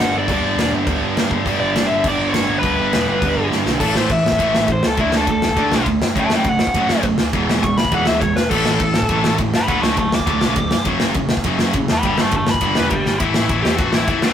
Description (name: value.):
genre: punk rock.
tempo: 204 BPM.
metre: 4/4.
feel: straight.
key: A mixolydian.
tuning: A4 = 436 Hz.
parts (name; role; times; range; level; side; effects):
biting lead guitar; melody; 0.0-14.3 s; D4 to D6; -20 LUFS; left 2 dB; overdrive.
distorted electric guitar; riff; 0.0-14.3 s; E2 to D4; -23 LUFS; left 6 dB; overdrive.
sludgy distorted guitar; riff; 0.0-13.1 s; F#2 to D4; -22 LUFS; right 6 dB; overdrive.
overdriven picked electric bass; bass; 0.0-14.3 s; E1 to G2; -27 LUFS; equal; none.
big rock drum kit; drums; 0.0-14.3 s; crash cymbal, kick drum, ride cymbal, snare drum; -19 LUFS; equal; none.
room: light reverb.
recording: rough rehearsal-room recording, warm saturation.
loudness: -15 LUFS.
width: side -9 dB against mid.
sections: 0.0-3.8 A section; 3.8-13.2 B section; 13.2-14.3 C section.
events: half time 0.0-3.8; drum fill 3.5, 13.1; lead electric guitar solo 3.8-13.2.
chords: 0.0 G; 3.8 A5; 5.0 D5; 6.2 F#m; 7.3 E; 8.5 A5; 9.7 D; 10.9 F#5; 12.0 G; 13.2 A5.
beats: | 0.29 0.58 0.87 1.17 | 1.46 1.75 2.05 2.34 | 2.63 2.93 3.22 3.52 | 3.81 4.10 4.40 4.69 | 4.99 5.28 5.58 5.87 | 6.16 6.46 6.75 7.05 | 7.34 7.63 7.93 8.22 | 8.52 8.81 9.11 9.40 | 9.70 9.99 10.29 10.58 | 10.87 11.17 11.46 11.75 | 12.05 12.34 12.63 12.93 | 13.22 13.51 13.80 14.10.